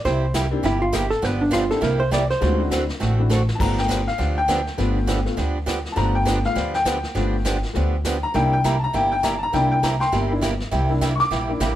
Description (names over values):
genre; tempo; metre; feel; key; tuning
country, western swing; 202 BPM; 4/4; swing 60% on 8ths; unclear; A4 = 440 Hz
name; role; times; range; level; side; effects
picked steel-string acoustic guitar; accompaniment; 0.0-11.7 s; C3 to A4; -26 LUFS; right 3 dB; none
hollow-body jazz guitar; second line; 0.1-2.7 s; D4 to D5; -22 LUFS; right 2 dB; none
upright bass; bass; 0.1-11.8 s; G1 to D2; -23 LUFS; equal; none
vintage brush drum kit; drums; 0.1-11.8 s; brushed snare drum, crash cymbal, hi-hat, kick drum, snare drum; -29 LUFS; left 1 dB; none
clear upright piano; accompaniment; 0.5-11.8 s; Ab3 to D6; -23 LUFS; left 2 dB; none
room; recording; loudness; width
light reverb; none; -19 LUFS; side -12 dB against mid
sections
0.0-3.6 A section; 3.6-11.8 A section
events
hollow-body jazz guitar solo 0.0-3.6; drum fill 3.3; upright piano solo 3.6-11.8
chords
0.1 C7; 1.2 G7; 1.8 C7; 2.4 D9; 3.6 G9; 8.3 C9